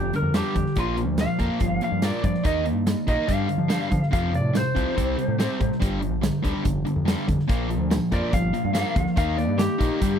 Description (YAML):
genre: classic rock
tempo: 143 BPM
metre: 4/4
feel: straight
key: G minor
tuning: A4 = 438 Hz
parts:
  - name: lightly driven lead guitar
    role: melody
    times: 0.0-10.2 s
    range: F4 to F5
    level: -28 LUFS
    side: left 1 dB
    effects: none
  - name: overdriven electric guitar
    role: riff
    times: 0.0-10.2 s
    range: F2 to Eb4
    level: -25 LUFS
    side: equal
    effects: none
  - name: growling fingered electric bass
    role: bass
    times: 0.0-10.2 s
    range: F1 to F3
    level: -28 LUFS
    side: equal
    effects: overdrive
  - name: big rock drum kit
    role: drums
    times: 0.1-10.1 s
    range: hi-hat, kick drum, snare drum, tambourine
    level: -26 LUFS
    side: equal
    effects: none
room: light reverb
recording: dry, close 1970s-style studio recording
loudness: -21 LUFS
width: side -8 dB against mid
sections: 0.0-10.2 A section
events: lead electric guitar solo 0.0-10.2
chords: 0.0 Gm; 0.8 Bb; 2.4 Eb; 3.3 G5; 4.1 F; 5.0 C5; 5.8 G5; 7.5 Bb; 9.2 Eb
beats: 0.34 | 0.76 1.19 1.61 2.03 | 2.45 2.87 3.29 3.71 | 4.13 4.55 4.97 5.39 | 5.81 6.23 6.65 7.07 | 7.49 7.91 8.33 8.75 | 9.17 9.60 10.02